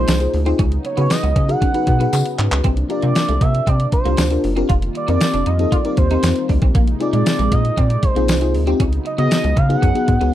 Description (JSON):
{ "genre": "early-eighties boogie funk", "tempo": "117 BPM", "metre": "4/4", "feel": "straight", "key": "unclear", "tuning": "A4 = 440 Hz", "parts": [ { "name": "expressive synth lead", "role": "melody", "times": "0.0-10.3 s", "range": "C5 to Gb5", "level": "-22 LUFS", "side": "right 3 dB", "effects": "chorus, slapback echo" }, { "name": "FM electric piano with soft pad layer", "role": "accompaniment", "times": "0.0-10.3 s", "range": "Cb4 to C5", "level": "-22 LUFS", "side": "left 5 dB", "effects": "chorus" }, { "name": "warm analog pad", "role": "sustained chords", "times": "0.0-10.3 s", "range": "C3 to F4", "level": "-29 LUFS", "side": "left 1 dB", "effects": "chorus" }, { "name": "clean electric guitar", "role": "riff", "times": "0.0-10.3 s", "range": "Ab3 to F4", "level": "-27 LUFS", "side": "right 5 dB", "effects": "analog chorus" }, { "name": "rubbery square bass", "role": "bass", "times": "0.0-10.3 s", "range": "F1 to Db3", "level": "-18 LUFS", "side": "equal", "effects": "none" }, { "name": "detuned 8-bit digital drum machine", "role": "drums", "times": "0.1-10.3 s", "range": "handclaps, hi-hat, kick drum, snare drum", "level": "-18 LUFS", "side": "equal", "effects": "none" }, { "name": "tambourine", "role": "percussion", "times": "0.1-9.4 s", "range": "none", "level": "-31 LUFS", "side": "left 13 dB", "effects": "none" } ], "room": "little or no reverb", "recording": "dry, close 1970s-style studio recording", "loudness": "-14 LUFS", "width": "side -12 dB against mid", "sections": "0.0-10.3 A section", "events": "drum fill 2.1-2.6; FM electric piano fill 10.1", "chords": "0.0 Bb9sus4; 0.6 Db9sus4; 2.6 C9sus4; 4.7 F9sus4; 6.7 Bb9sus4; 8.8 Db9sus4" }